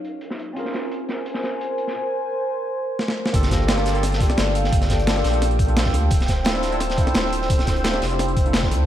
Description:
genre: liquid drum and bass.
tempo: 173 BPM.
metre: 4/4.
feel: straight.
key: G dorian.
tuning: A4 = 440 Hz.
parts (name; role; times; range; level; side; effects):
barky tine electric piano; accompaniment; 0.0-8.9 s; Bb3 to Bb4; -27 LUFS; right 1 dB; analog chorus, ping-pong delay.
warm analog pad; sustained chords; 0.0-8.9 s; Gb3 to E6; -27 LUFS; right 1 dB; chorus.
crunchy breakbeat drum kit; drums; 0.0-8.8 s; hi-hat, snare drum; -29 LUFS; equal; high-pass filter on hats, low-pass filter on hats, high-pass filter on snare, low-pass filter on snare, high-pass filter on room, low-pass filter on room.
breakbeat sampler-style drum kit; drums; 3.0-8.8 s; hi-hat, snare drum; -26 LUFS; equal; none.
warm sub bass; bass; 3.3-8.9 s; D1 to D2; -23 LUFS; equal; none.
electronic kick drum; drums; 3.3-8.7 s; none; -21 LUFS; equal; none.
vibraphone with hard mallets; melody; 3.5-5.4 s; Bb4 to F5; -29 LUFS; left 3 dB; diffuse ambient delay.
room: moderate lush hall reverb, RT60 1.9 s, studio ambience.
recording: dreamy mix soaked in reverb.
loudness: -19 LUFS.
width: side -11 dB against mid.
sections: 0.0-3.3 A section; 3.3-8.9 B section.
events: filter sweep on analog synth pad 0.0-3.3; drum fill 3.0-3.3; drop 3.3-8.9.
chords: 0.0 Ebm9; 0.6 Bbm9; 3.3 Gm9; 6.1 Dm9.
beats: 0.22 | 0.56 0.91 1.26 1.60 | 1.95 2.30 2.64 2.99 | 3.34 3.69 4.03 4.38 | 4.72 5.07 5.42 5.76 | 6.11 6.46 6.81 7.15 | 7.50 7.85 8.19 8.54.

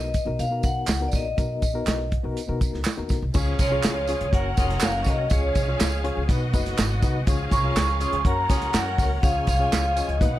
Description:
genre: uptempo 1960s-style soul.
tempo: 122 BPM.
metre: 4/4.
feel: straight.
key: Db major.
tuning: A4 = 440 Hz.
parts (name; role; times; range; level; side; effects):
vibraphone with medium hard mallets; melody; 0.0-10.4 s; Db5 to Db6; -27 LUFS; equal; plate reverb, tape echo.
reed electric piano; accompaniment; 0.0-10.4 s; Cb3 to Eb5; -32 LUFS; left 5 dB; overdrive, fast tremolo, plate reverb.
upright bass; bass; 0.0-10.4 s; F1 to Cb3; -27 LUFS; equal; none.
warm soul drum kit; drums; 0.1-10.3 s; crash cymbal, hi-hat, kick drum, snare drum; -24 LUFS; equal; none.
tambourine and handclaps; percussion; 0.1-10.3 s; none; -32 LUFS; right 6 dB; none.
overdriven tonewheel organ; sustained chords; 3.3-10.4 s; Eb3 to Bb4; -36 LUFS; equal; slow rotary speaker, chorus vibrato, plate reverb.
warm studio string section; second line; 3.4-10.4 s; Cb4 to Ab5; -33 LUFS; right 1 dB; plate reverb, tape echo.
warm horn section; second line; 3.6-9.1 s; Db4 to Bb4; -34 LUFS; right 1 dB; plate reverb.
room: light reverb.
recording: none.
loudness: -21 LUFS.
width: side -14 dB against mid.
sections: 0.0-3.3 A section; 3.3-10.4 B section.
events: none.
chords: 0.0 Cbmaj7; 3.3 Db; 4.3 Gb; 5.3 Db; 6.3 Cb; 7.3 Db; 8.3 Gb; 9.2 Db.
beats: 0.39 0.88 | 1.38 1.87 2.36 2.85 | 3.35 3.84 4.33 4.82 | 5.31 5.80 6.29 6.79 | 7.28 7.77 8.26 8.75 | 9.24 9.73 10.22.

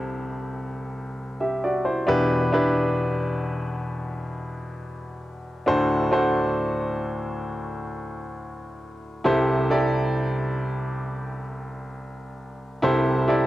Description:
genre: pop.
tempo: free time.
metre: none.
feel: none.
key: unclear.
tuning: A4 = 440 Hz.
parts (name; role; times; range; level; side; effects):
clear baby grand piano; solo; 0.0-13.5 s; C2 to E5; -23 LUFS; equal; analog delay.
room: moderate booth ambience, RT60 0.3 s.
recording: home recording on cassette.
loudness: -22 LUFS.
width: side -15 dB against mid.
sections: 0.0-13.5 A section.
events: none.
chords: 0.0 Am7/C; 2.1 Em7; 5.7 D7; 9.3 Am7/C.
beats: free time.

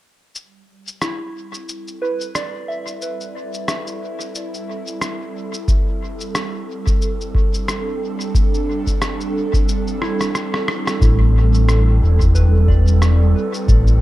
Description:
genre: ambient dub.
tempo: 90 BPM.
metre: 4/4.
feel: swing 57% on 16ths.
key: A minor.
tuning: A4 = 440 Hz.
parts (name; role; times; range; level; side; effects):
airy breathy pad; sustained chords; 0.4-14.0 s; G3 to A4; -24 LUFS; right 3 dB; chorus.
electronic shaker and rim click; drums; 0.4-14.0 s; none; -26 LUFS; equal; dub echo.
soft synth bell; arpeggios; 1.0-14.0 s; E4 to E5; -30 LUFS; right 1 dB; chorus, phaser, low-pass filter, analog delay.
electronic kick drum; drums; 5.7-13.8 s; none; -18 LUFS; equal; overdrive.
fingered electric bass; bass; 11.0-14.0 s; E1 to A1; -12 LUFS; equal; none.
room: little or no reverb.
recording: echo-heavy mix.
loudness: -16 LUFS.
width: side -16 dB against mid.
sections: 0.4-11.0 A section; 11.0-14.0 B section.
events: fade-in on analog synth pad 0.4-11.0; break 9.7-11.0; drum fill 10.0-11.0.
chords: 0.4 Am7.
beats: | 0.35 1.02 1.68 2.35 | 3.02 3.68 4.35 5.02 | 5.68 6.35 7.02 7.68 | 8.35 9.02 9.68 10.35 | 11.02 11.68 12.35 13.02 | 13.68.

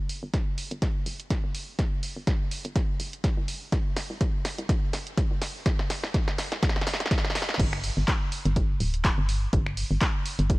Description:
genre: deep house.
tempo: 124 BPM.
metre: 4/4.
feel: swing 56% on 16ths.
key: unclear.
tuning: A4 = 440 Hz.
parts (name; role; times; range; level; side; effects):
organ-like FM bass; bass; 0.0-10.6 s; D1 to C2; -28 LUFS; equal; sidechain pumping, high-pass filter.
punchy analog drum machine; drums; 0.1-10.6 s; crash cymbal, finger snaps, handclaps, hi-hat, snare drum; -31 LUFS; equal; high-pass filter on hats, high-pass filter on snare, high-pass filter on cymbals.
electronic kick drum; drums; 0.3-10.6 s; none; -26 LUFS; equal; overdrive.
room: digital ambience.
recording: vinyl crackle.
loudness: -25 LUFS.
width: side -22 dB against mid.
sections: 0.0-7.6 A section; 7.6-10.6 B section.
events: build-up 0.0-7.6; drum fill 0.0-7.6; drop 7.6-10.6.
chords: none.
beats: 0.34 0.82 1.30 | 1.79 2.27 2.76 3.24 | 3.72 4.21 4.69 5.17 | 5.66 6.14 6.63 7.11 | 7.59 8.08 8.56 9.05 | 9.53 10.01 10.50.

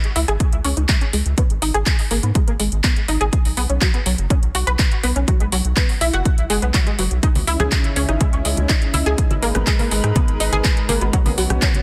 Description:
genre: progressive house.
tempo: 123 BPM.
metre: 4/4.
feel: straight.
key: G# minor.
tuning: A4 = 444 Hz.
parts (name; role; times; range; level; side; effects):
house drum kit; drums; 0.0-11.8 s; handclaps, hi-hat, rim click; -26 LUFS; equal; none.
analog pluck; arpeggios; 0.2-11.7 s; F#3 to B4; -26 LUFS; equal; ensemble chorus, sidechain pumping, dub echo.
round analog bass; bass; 0.2-11.6 s; F#1 to G#2; -23 LUFS; equal; tube saturation, sidechain pumping.
electronic kick drum; drums; 0.4-11.7 s; none; -20 LUFS; equal; none.
lush unison pad; sustained chords; 7.2-11.8 s; C#3 to B4; -29 LUFS; equal; chorus, sidechain pumping.
congas and bongos; percussion; 7.4-11.8 s; none; -29 LUFS; equal; sidechain pumping on perc.
room: little or no reverb.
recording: dense, heavily limited modern master.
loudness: -18 LUFS.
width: mono.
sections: 0.0-11.8 A section.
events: filter sweep on synth pluck 0.0-11.8.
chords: 0.0 C#madd9; 1.4 G#madd9; 3.3 Bsus2; 5.3 Eadd9 (rootless); 7.2 C#madd9; 9.2 G#madd9; 11.1 Bsus2.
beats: 0.40 0.89 | 1.38 1.86 2.35 2.84 | 3.33 3.82 4.30 4.79 | 5.28 5.77 6.25 6.74 | 7.23 7.72 8.21 8.69 | 9.18 9.67 10.16 10.64 | 11.13 11.62.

